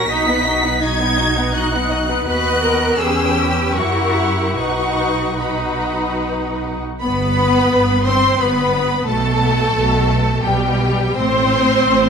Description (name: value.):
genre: classical, slow romantic movement for string orchestra.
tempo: 71-91 BPM.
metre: 3/4.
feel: rubato.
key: B major, G major from 7.0 s.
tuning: A4 = 442 Hz.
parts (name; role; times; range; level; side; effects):
warm studio violin section; melody; 0.0-12.1 s; G5 to B6; -21 LUFS; left 2 dB; none.
warm studio violin section; second line; 0.0-12.1 s; G4 to G5; -21 LUFS; left 2 dB; none.
warm studio viola section; accompaniment; 0.0-12.1 s; G3 to G4; -20 LUFS; equal; none.
rich studio cello section; bass; 0.0-12.1 s; G2 to B4; -23 LUFS; right 2 dB; none.
warm studio double bass section; bass; 0.0-12.1 s; G1 to F#2; -23 LUFS; right 2 dB; none.
room: moderate scoring stage reverb, RT60 1.6 s.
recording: minimal, uncompressed stereo recording.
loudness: -14 LUFS.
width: side -6 dB against mid.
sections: 0.0-7.0 A section; 7.0-12.1 B section.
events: none.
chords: 0.1 B; 2.3 B/D#; 3.0 C#m7b5/E; 3.8 F#7b9; 4.6 B; 7.0 G; 9.1 G/B; 11.2 Am.